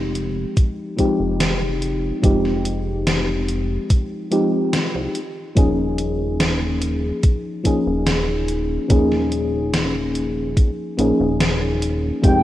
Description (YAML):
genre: vaporwave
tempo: 72 BPM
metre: 4/4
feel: straight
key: unclear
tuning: A4 = 440 Hz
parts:
  - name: mellow FM electric piano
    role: accompaniment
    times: 0.0-12.4 s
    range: F3 to Ab4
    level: -20 LUFS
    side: left 1 dB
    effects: wide subtle chorus, analog delay
  - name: chorused synth bass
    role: bass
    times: 0.0-12.4 s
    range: Eb1 to C2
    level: -24 LUFS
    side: equal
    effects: none
  - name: gated 80s digital drum machine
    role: drums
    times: 0.2-12.4 s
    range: hi-hat, snare drum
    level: -24 LUFS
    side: equal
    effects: gated reverb, gated reverb snare, small room ambience
  - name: electronic kick drum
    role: drums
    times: 0.6-12.4 s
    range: none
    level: -15 LUFS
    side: equal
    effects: small room ambience
  - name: warm velvety synth lead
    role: melody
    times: 12.2-12.4 s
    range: G5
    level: -19 LUFS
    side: right 1 dB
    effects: chorus
room: moderate lush hall reverb, RT60 2.4 s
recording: rough home demo mix, cassette tape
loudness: -18 LUFS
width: side -14 dB against mid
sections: 0.0-12.4 A section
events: none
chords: 0.0 Fm9; 5.2 Eb9sus4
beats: 0.57 1.40 | 2.23 3.07 3.90 4.74 | 5.57 6.40 7.24 8.07 | 8.90 9.73 10.57 11.40 | 12.23